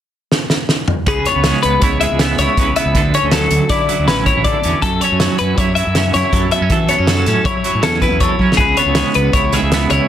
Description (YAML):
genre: math rock and midwest emo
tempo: 160 BPM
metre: 5/4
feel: straight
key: F# minor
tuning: A4 = 440 Hz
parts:
  - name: loose indie drum kit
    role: drums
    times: 0.3-10.0 s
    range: hi-hat, kick drum, snare drum, toms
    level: -18 LUFS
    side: equal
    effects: none
  - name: twelve-string electric guitar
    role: accompaniment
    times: 1.1-10.1 s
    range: F#2 to B4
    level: -18 LUFS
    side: right 8 dB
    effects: tremolo
  - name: twelve-string electric guitar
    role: arpeggios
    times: 1.1-10.1 s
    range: G#4 to E5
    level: -17 LUFS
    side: left 7 dB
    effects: slapback echo
  - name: fuzz fingered electric bass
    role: bass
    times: 1.1-10.0 s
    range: A1 to F#3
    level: -19 LUFS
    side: equal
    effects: overdrive
room: light reverb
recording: dense, heavily limited modern master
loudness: -12 LUFS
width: side -10 dB against mid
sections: 0.0-1.1 A section; 1.1-10.1 B section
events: drum fill 0.3-1.1, 8.4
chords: 0.0 N.C.; 1.1 C#m7; 2.9 Bm11/D; 4.8 F#m7; 8.6 C#m7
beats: 0.32 0.70 | 1.07 1.45 1.82 2.20 2.57 | 2.95 3.32 3.70 4.07 4.45 | 4.82 5.20 5.57 5.95 6.32 | 6.70 7.08 7.45 7.83 8.20 | 8.58 8.96 9.33 9.71